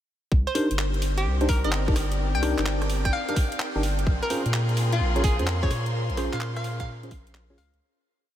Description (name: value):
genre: UK garage, two-step garage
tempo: 128 BPM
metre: 4/4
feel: swing 67% on 16ths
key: unclear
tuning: A4 = 441 Hz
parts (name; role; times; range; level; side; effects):
- saturated sub bass; bass; 0.3-7.8 s; G1 to Bb2; -26 LUFS; equal; sidechain pumping
- electronic kick drum; drums; 0.3-7.2 s; none; -23 LUFS; equal; none
- warbly tape-like pad; texture; 0.3-7.8 s; C4 to C6; -36 LUFS; equal; chorus, built-in reverb, sidechain pumping
- hollow square pluck; melody; 0.5-7.8 s; F4 to G5; -31 LUFS; equal; chorus, tape echo
- garage drum kit; drums; 0.5-7.8 s; handclaps, hi-hat, rim click; -33 LUFS; equal; none
- tine electric piano; stabs; 0.6-7.6 s; Db4 to Db5; -30 LUFS; equal; phaser, tape echo
- warm studio violin section; sustained chords; 4.1-7.8 s; Bb3 to C6; -35 LUFS; left 2 dB; sidechain pumping
room: moderate huge ambient reverb, RT60 7.5 s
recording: dreamy mix soaked in reverb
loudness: -22 LUFS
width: side -11 dB against mid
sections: 0.3-7.8 drop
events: drop 0.3-7.8; fade-out 5.3-7.8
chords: 0.3 Cm9; 4.1 Bbm9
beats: | 0.32 0.79 1.25 1.72 | 2.19 2.66 3.13 3.60 | 4.07 4.54 5.00 5.47 | 5.94 6.41 6.88 7.35